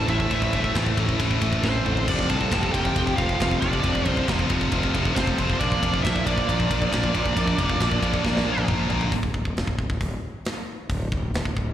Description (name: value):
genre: heavy metal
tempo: 136 BPM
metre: 4/4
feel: straight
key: unclear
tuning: A4 = 440 Hz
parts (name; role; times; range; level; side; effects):
- high-gain lead guitar; melody; 0.0-8.6 s; C5 to A5; -28 LUFS; equal; distortion, slapback echo, digital delay
- lead guitar through a small cranked amp; second line; 0.0-8.6 s; C4 to A4; -33 LUFS; right 6 dB; overdrive
- warm studio string section; sustained chords; 0.0-9.1 s; F3 to D5; -36 LUFS; right 2 dB; none
- heavy high-gain guitar; riff; 0.0-9.1 s; F2 to Bb3; -29 LUFS; right 12 dB; distortion, slapback echo
- high-gain distorted guitar; riff; 0.0-9.1 s; F2 to Bb3; -27 LUFS; left 7 dB; distortion
- fuzz fingered electric bass; bass; 0.0-11.7 s; D1 to C2; -26 LUFS; equal; overdrive
- tight metal drum kit; drums; 0.1-11.7 s; crash cymbal, hi-hat, kick drum, ride cymbal, snare drum, toms; -27 LUFS; equal; none
room: little or no reverb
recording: live gig heard through the venue's PA, recital hall reverb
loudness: -21 LUFS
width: side -11 dB against mid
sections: 0.0-9.1 A section; 9.1-11.7 B section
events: drum fill 1.6-2.1, 8.2-9.1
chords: 0.0 Am; 2.1 F; 5.6 Bb; 9.1 N.C.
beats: | 0.31 0.75 1.20 1.64 | 2.08 2.52 2.96 3.40 | 3.84 4.29 4.72 5.17 | 5.61 6.04 6.49 6.92 | 7.37 7.80 8.25 8.69 | 9.13 9.57 10.02 10.46 | 10.90 11.35